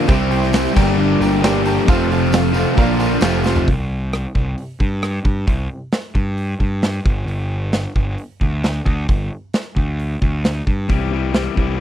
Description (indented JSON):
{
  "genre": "classic rock",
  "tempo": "133 BPM",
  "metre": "4/4",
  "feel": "straight",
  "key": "unclear",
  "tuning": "A4 = 440 Hz",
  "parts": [
    { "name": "bright grand piano", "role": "accompaniment", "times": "0.0-3.6 s", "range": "F4 to A5", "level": "-25 LUFS", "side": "right 2 dB", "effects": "none" },
    { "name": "overdriven tonewheel organ", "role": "sustained chords", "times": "0.0-3.7 s", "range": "C4 to G5", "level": "-30 LUFS", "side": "equal", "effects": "none" },
    { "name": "crunchy overdriven guitar", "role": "riff", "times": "0.0-3.7 s", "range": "F2 to C4", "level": "-20 LUFS", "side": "right 1 dB", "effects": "none" },
    { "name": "distorted electric guitar", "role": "riff", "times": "0.0-3.7, 10.9-11.8 s", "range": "F2 to G4", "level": "-21 LUFS", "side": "left 12 dB", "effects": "distortion" },
    { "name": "overdriven semi-hollow guitar", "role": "riff", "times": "0.0-3.7 s", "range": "F2 to E4", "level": "-22 LUFS", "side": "right 13 dB", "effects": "none" },
    { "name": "fuzz picked electric bass", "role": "bass", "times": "0.1-11.8 s", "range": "F1 to G2", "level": "-21 LUFS", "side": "equal", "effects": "overdrive" },
    { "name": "big rock drum kit", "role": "drums", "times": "0.1-11.7 s", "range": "crash cymbal, hi-hat, kick drum, rim click, snare drum, toms", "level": "-18 LUFS", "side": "equal", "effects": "none" },
    { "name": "tambourine", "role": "percussion", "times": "0.1-3.5 s", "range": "none", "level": "-38 LUFS", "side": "left 3 dB", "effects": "none" }
  ],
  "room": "small room ambience",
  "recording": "dry, close 1970s-style studio recording",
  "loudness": "-16 LUFS",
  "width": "side -10 dB against mid",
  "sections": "0.0-3.7 A section; 3.7-11.8 B section",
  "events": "drum fill 3.4",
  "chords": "0.1 C; 0.8 Gm; 1.9 F; 2.8 Bb; 3.2 F; 3.7 C5; 7.1 G5; 10.9 C"
}